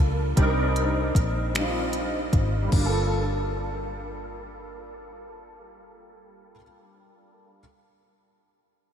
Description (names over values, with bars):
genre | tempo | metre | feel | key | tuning
slow six-eight R&B | 51 BPM (dotted quarters) | 6/8 | straight | G minor | A4 = 440 Hz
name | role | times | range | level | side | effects
clear grand piano | accompaniment | 0.0-7.6 s | G3 to Bb4 | -28 LUFS | equal | ensemble chorus
vintage muted fingered electric bass | bass | 0.0-6.5 s | G1 to C#2 | -27 LUFS | equal | none
smooth R&B drum kit | drums | 0.4-2.9 s | crash cymbal, finger snaps, hi-hat, kick drum | -25 LUFS | equal | none
room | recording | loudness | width
moderate huge ambient reverb, RT60 4.7 s | dreamy mix soaked in reverb | -22 LUFS | side -8 dB against mid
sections
0.0-2.7 A section; 2.7-5.1 B section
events
none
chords
0.4 Cm9; 2.7 Gm9